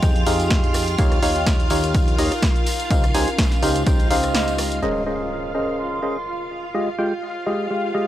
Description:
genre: piano house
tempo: 125 BPM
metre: 4/4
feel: swing 55% on 16ths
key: unclear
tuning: A4 = 440 Hz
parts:
  - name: string machine, violins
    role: sustained chords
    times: 0.0-8.1 s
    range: F4 to F5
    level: -30 LUFS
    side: equal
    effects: ensemble chorus, sidechain pumping
  - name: percussive organ stab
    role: riff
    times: 0.0-8.1 s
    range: Ab3 to Ab5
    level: -23 LUFS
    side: equal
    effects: wide subtle chorus, sidechain pumping, tape echo
  - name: plucky analog bass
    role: bass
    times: 0.0-4.8 s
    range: Db2 to F2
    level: -26 LUFS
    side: equal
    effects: sidechain pumping
  - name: electronic kick drum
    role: drums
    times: 0.0-4.0 s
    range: none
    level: -19 LUFS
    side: equal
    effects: none
  - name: punchy analog drum machine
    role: drums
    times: 0.0-4.9 s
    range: crash cymbal, hi-hat, rim click, snare drum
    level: -26 LUFS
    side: equal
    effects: low-pass filter on hats, low-pass filter on snare, low-pass filter on cymbals
  - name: tambourine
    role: percussion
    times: 0.0-4.8 s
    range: none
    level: -34 LUFS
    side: left 1 dB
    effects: none
  - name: warbly tape-like pad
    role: texture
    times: 0.0-8.1 s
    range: Ab3 to C6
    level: -30 LUFS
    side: equal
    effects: chorus, built-in reverb, phaser, sidechain pumping
  - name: impact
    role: sound effects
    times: 4.8-6.7 s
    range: none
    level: -36 LUFS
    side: equal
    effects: none
room: digital ambience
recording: dry, gritty hardware recording, transformer saturation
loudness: -18 LUFS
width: side -13 dB against mid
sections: 0.0-4.8 A section; 4.8-8.1 B section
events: break 4.3-4.8; band accent 4.3; impact 4.8-6.7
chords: 0.0 Fm9; 1.0 Eb9; 2.9 Dbmaj9#11; 4.8 Bbm11; 6.5 Fm9

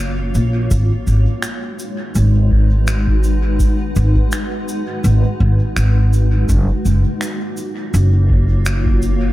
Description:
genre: ambient dub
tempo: 83 BPM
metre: 4/4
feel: swing 56% on 16ths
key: G# dorian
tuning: A4 = 440 Hz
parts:
  - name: granular cloud pad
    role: sustained chords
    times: 0.0-9.3 s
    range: G#3 to F#5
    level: -22 LUFS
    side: equal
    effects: built-in reverb
  - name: upright bass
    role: bass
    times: 0.0-9.3 s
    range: F#1 to A#1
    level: -14 LUFS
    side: equal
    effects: none
  - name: cabasa and finger snaps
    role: drums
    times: 0.3-9.2 s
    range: none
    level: -28 LUFS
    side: equal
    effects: dub echo
  - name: electronic kick drum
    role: drums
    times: 0.7-9.0 s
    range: none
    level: -18 LUFS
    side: equal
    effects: none
room: little or no reverb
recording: echo-heavy mix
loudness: -13 LUFS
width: side -16 dB against mid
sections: 0.0-9.3 A section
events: none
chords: 0.0 F#maj7; 0.7 G#m7; 6.5 F#maj7

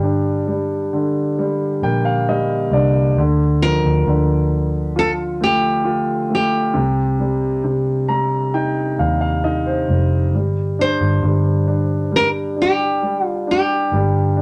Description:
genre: pop ballad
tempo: 67 BPM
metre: 4/4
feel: straight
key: G minor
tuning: A4 = 444 Hz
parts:
  - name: nylon-string guitar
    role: melody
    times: 0.0-14.4 s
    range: G4 to C5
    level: -22 LUFS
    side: equal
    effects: none
  - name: dark baby grand piano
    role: accompaniment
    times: 0.0-14.4 s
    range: C3 to Bb5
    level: -22 LUFS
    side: equal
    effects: none
  - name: vintage muted fingered electric bass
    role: bass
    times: 0.0-14.4 s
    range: F1 to Eb2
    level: -21 LUFS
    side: equal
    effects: none
room: light reverb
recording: none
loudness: -18 LUFS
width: mono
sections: 0.0-14.4 A section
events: grand piano fill 1.4-3.2, 7.7-10.3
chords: 0.0 Gm; 3.2 Dm; 6.8 Cm; 10.3 G5

